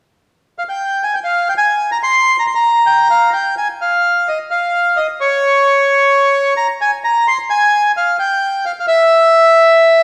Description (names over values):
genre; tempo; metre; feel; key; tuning
tango; 130 BPM; 4/4; rubato; F minor; A4 = 440 Hz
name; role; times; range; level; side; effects
bandoneon; solo; 0.6-10.0 s; Db5 to C6; -13 LUFS; equal; none
room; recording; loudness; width
wet recital hall reverb, RT60 1.7 s; recorded in a church or concert hall; -14 LUFS; mono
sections
0.0-3.6 A section; 3.6-10.0 B section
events
none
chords
none